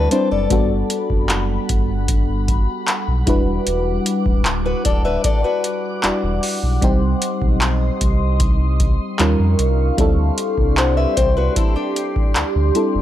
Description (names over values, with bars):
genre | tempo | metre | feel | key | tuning
contemporary R&B | 76 BPM | 4/4 | straight | G major | A4 = 440 Hz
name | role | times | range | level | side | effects
mellow FM electric piano | accompaniment | 0.0-13.0 s | G3 to D5 | -22 LUFS | left 1 dB | chorus, phaser
glassy FM pad | sustained chords | 0.0-13.0 s | G3 to D6 | -26 LUFS | equal | ensemble chorus, built-in reverb, phaser
fingerpicked acoustic archtop guitar | arpeggios | 0.0-12.9 s | D4 to F#5 | -22 LUFS | left 4 dB | none
sub bass with octave | bass | 0.0-13.0 s | D1 to F2 | -19 LUFS | equal | none
booming analog drum machine | drums | 0.1-12.9 s | handclaps, hi-hat, kick drum | -19 LUFS | equal | none
room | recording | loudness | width
little or no reverb | dry, gritty hardware recording, transformer saturation | -16 LUFS | side -12 dB against mid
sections
0.0-13.0 A section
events
none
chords
0.0 D7sus4; 0.5 Gmaj7; 3.3 Em9; 6.8 Cm; 9.2 Eb9; 10.0 D7sus4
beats
| 0.51 1.30 2.09 2.88 | 3.67 4.46 5.25 6.04 | 6.83 7.62 8.40 9.19 | 9.98 10.77 11.56 12.35